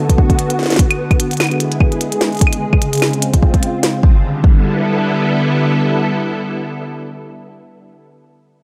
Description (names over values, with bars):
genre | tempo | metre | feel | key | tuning
IDM | 148 BPM | 4/4 | swing 56% on 16ths | G major | A4 = 439 Hz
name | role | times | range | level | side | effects
soft string machine | sustained chords | 0.0-8.0 s | C#3 to A4 | -19 LUFS | equal | ensemble chorus
electronic kick drum | drums | 0.1-4.6 s | none | -14 LUFS | equal | studio reverb
glitchy drum kit | drums | 0.1-3.9 s | claves, hi-hat, snare drum | -21 LUFS | equal | studio reverb
room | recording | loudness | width
light reverb | dry, gritty hardware recording | -15 LUFS | mono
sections
0.0-4.0 A section; 4.0-7.3 B section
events
filter sweep on string machine 0.0-4.0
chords
0.0 Bm7; 0.8 E7; 2.4 C#maj7; 4.0 G69